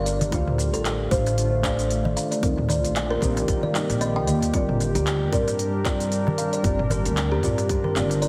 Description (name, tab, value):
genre	organic downtempo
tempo	114 BPM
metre	4/4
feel	swing 56% on 16ths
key	G minor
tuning	A4 = 438 Hz
part	deep mellow chord stab	accompaniment	0.0-8.3 s	G3 to F5	-33 LUFS	equal	chorus, phaser, sidechain pumping, digital delay
part	warbly tape-like pad	sustained chords	0.0-8.3 s	D3 to Bb4	-32 LUFS	equal	chorus, built-in reverb, sidechain pumping
part	kalimba	arpeggios	0.0-8.3 s	F4 to G5	-30 LUFS	equal	digital delay
part	upright bass	bass	0.0-8.3 s	G1 to G2	-28 LUFS	equal	tube saturation, sidechain pumping
part	organic electronic drum kit	drums	0.1-8.3 s	handclaps, hi-hat, shaker, toms	-32 LUFS	equal	studio ambience
part	darbuka	percussion	0.2-8.2 s	none	-33 LUFS	equal	none
part	electronic kick drum	drums	0.3-7.8 s	none	-29 LUFS	equal	studio ambience
room	moderate scoring stage reverb, RT60 1.5 s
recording	heavily compressed radio sound, multiband compression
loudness	-23 LUFS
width	mono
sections	0.0-8.3 A section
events	none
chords	0.3 Dm7; 2.4 Ebmaj7; 4.5 Gm7